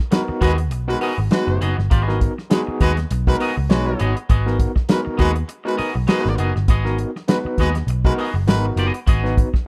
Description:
funk; 100 BPM; 4/4; swing 56% on 16ths; G# minor; A4 = 443 Hz
warm horn section; second line; 0.1-8.7 s; G#3 to B4; -26 LUFS; equal
twangy electric guitar; accompaniment; 0.1-9.6 s; B3 to D#5; -29 LUFS; equal
overdriven tine electric piano; stabs; 0.1-9.5 s; B3 to C#5; -27 LUFS; equal; medium tremolo
warm soul drum kit; drums; 0.1-9.7 s; hi-hat, kick drum, snare drum; -21 LUFS; equal
vintage muted picked electric bass; bass; 0.3-9.4 s; F#1 to D#2; -23 LUFS; equal
little or no reverb; rough home demo mix; -19 LUFS; mono
0.0-9.7 A section
0.0 G#m7

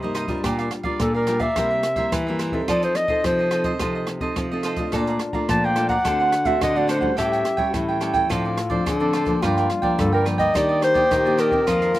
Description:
samba and choro; 107 BPM; 4/4; straight; A4 = 440 Hz
cavaquinho; accompaniment; 0.0-12.0 s; D4 to Bb5; -26 LUFS; right 6 dB; slapback echo
nylon-string guitar; accompaniment; 0.0-12.0 s; F2 to A4; -27 LUFS; left 1 dB; slapback echo
nylon-string guitar; bass; 0.0-11.9 s; G2 to F3; -26 LUFS; equal
open jazz drum kit; drums; 0.1-12.0 s; hi-hat, kick drum, rim click; -30 LUFS; equal
mellow clarinet; melody; 1.0-12.0 s; A4 to A5; -21 LUFS; left 1 dB; slapback echo
warm trombone; second line; 4.9-12.0 s; D4 to A4; -27 LUFS; left 4 dB; slapback echo
little or no reverb; recorded outdoors, with no room sound; -19 LUFS; side -15 dB against mid
0.0-12.0 A section
0.4 Gm7/Bb; 1.6 C7; 2.7 F7; 4.9 Bbmaj7; 6.1 D7; 7.2 A7; 8.3 Dm7/A; 9.4 Gm7; 10.6 Ebmaj7

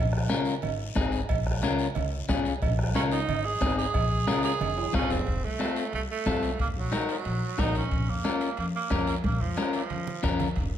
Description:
latin, cumbia; 181 BPM; 4/4; straight; Bb minor, Bb harmonic minor from 5.3 s; A4 = 438 Hz
upright bass; bass; 0.0-10.8 s; F1 to F2; -31 LUFS; equal
bombo; percussion; 0.1-10.7 s; -31 LUFS; equal
electric guitar at the edge of break-up; accompaniment; 0.3-10.5 s; C4 to Bb4; -30 LUFS; left 5 dB
congas; percussion; 0.3-10.7 s; -36 LUFS; right 3 dB
guiro; percussion; 0.3-10.8 s; -43 LUFS; left 6 dB
cowbell and timbales; percussion; 0.6-10.7 s; -38 LUFS; right 9 dB
breathy tenor saxophone; second line; 3.0-10.4 s; F3 to Ab4; -31 LUFS; right 5 dB
moderate large studio reverb, RT60 1.3 s; dark, warm production; -25 LUFS; side -10 dB against mid
0.0-5.3 A section; 5.3-10.8 B section
tenor saxophone solo 0.0-5.3, 5.3-10.8; drum fill 4.8-5.3, 9.2-10.6
0.0 Bbm; 0.6 Ab; 1.3 Bbm; 2.0 Db; 2.6 Bbm; 3.3 Ab; 3.9 Bbm7; 4.6 Fm; 5.3 F; 6.6 Ebm; 7.9 Bbm

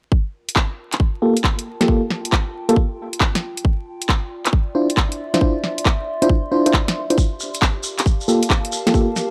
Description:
UK garage, two-step garage; 136 BPM; 4/4; swing 66% on 16ths; G minor; A4 = 440 Hz
electronic kick drum; drums; 0.1-9.1 s; -20 LUFS; equal
warbly tape-like pad; texture; 0.1-9.3 s; F4 to C6; -33 LUFS; equal; chorus, built-in reverb, sidechain pumping
garage drum kit; drums; 0.5-9.3 s; handclaps, hi-hat, snare drum; -23 LUFS; equal
FM electric piano; stabs; 1.2-9.1 s; Bb3 to C5; -21 LUFS; equal; chorus, low-pass filter, tape echo
shekere; percussion; 7.2-9.3 s; -31 LUFS; equal
little or no reverb; dry, gritty hardware recording, vinyl crackle; -19 LUFS; mono
0.1-9.3 A section
fade-in on ambient pad 0.1-9.3; filter sweep on FM electric piano 0.1-9.3
0.1 Gm9; 3.6 Dm9; 7.2 Gm9

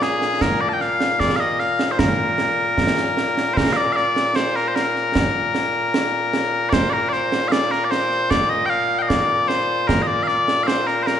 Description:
scottish traditional, Scottish pipe music; 76 BPM; 2/4; straight; Bb mixolydian; A4 = 439 Hz
mellow small bagpipes; melody; 0.0-11.2 s; Bb2 to A5; -18 LUFS; left 1 dB
concert snare drum and concert bass drum; drums; 0.0-11.2 s; -23 LUFS; right 3 dB
wet recital hall reverb, RT60 1.5 s; recorded in a church or concert hall, nothing above 11.0 kHz; -17 LUFS; side -9 dB against mid
0.0-3.6 A section; 3.6-11.2 B section

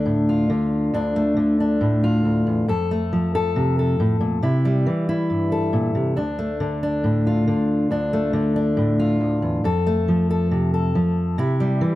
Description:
folk; 138 BPM; 4/4; straight; D minor; A4 = 441 Hz
fingerpicked steel-string acoustic guitar; solo; 0.0-12.0 s; D2 to A4; -18 LUFS; equal
light reverb; -18 LUFS; side -16 dB against mid
0.0-12.0 A section
0.0 Dm; 2.7 F; 4.4 C; 6.2 Dm; 9.6 F; 11.4 C

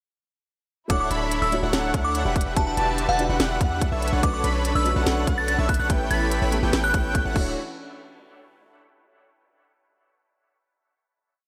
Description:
future bass; 144 BPM; 4/4; half-time; D major; A4 = 440 Hz
glassy synth bell; melody; 0.9-7.3 s; F#5 to A6; -30 LUFS; equal; chorus, sidechain pumping, delay
dark grand piano; accompaniment; 0.9-7.6 s; G3 to C#5; -34 LUFS; equal; sidechain pumping, dub echo
warm studio string section; sustained chords; 0.9-7.6 s; D3 to G4; -39 LUFS; equal
airy dreamy lead; arpeggios; 0.9-7.5 s; E5 to B5; -34 LUFS; equal; chorus, cassette tape, sidechain pumping
dense compressed supersaw; riff; 0.9-7.5 s; D4 to B5; -31 LUFS; equal; sidechain pumping
warm 808-style bass; bass; 0.9-7.6 s; D1 to E2; -29 LUFS; equal; sidechain pumping
electronic kick drum; drums; 0.9-7.4 s; -26 LUFS; equal
trap drum kit; drums; 0.9-7.4 s; crash cymbal, hi-hat, snare drum; -30 LUFS; equal
light reverb; -23 LUFS; mono
0.9-7.6 drop; 7.6-9.2 final hit
drop 0.9-7.6
0.9 Dmaj9; 2.4 Em9; 4.0 Bm9; 5.9 A9; 7.4 Dmaj9; 7.6 N.C.

